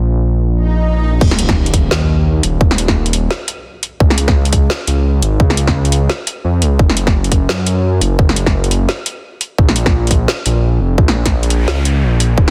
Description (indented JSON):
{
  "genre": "half-time drum and bass",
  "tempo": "172 BPM",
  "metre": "4/4",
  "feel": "swing 58% on 16ths, half-time",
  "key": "unclear",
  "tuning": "A4 = 440 Hz",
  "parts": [
    { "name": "dark detuned saw bass", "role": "bass", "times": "0.0-12.5 s", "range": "Eb1 to Gb2", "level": "-16 LUFS", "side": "equal", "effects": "tube saturation" },
    { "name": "swell, impact and noise sweep", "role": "sound effects", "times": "0.6-2.6, 11.4-12.4 s", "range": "none", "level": "-25 LUFS", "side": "equal", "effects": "none" },
    { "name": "drum and bass drum kit", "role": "drums", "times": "1.2-12.5 s", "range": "crash cymbal, hi-hat, snare drum", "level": "-20 LUFS", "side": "equal", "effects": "soft clipping on snare" },
    { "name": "electronic kick drum", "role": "drums", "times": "1.2-12.5 s", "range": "none", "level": "-15 LUFS", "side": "equal", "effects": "none" }
  ],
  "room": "little or no reverb",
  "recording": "dense, heavily limited modern master",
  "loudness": "-14 LUFS",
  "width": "mono",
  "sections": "0.0-1.2 A section; 1.2-12.5 B section",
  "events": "swell 0.6-1.2; drop 1.2-12.5; impact 1.2-2.6; noise sweep 11.4-12.4",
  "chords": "none"
}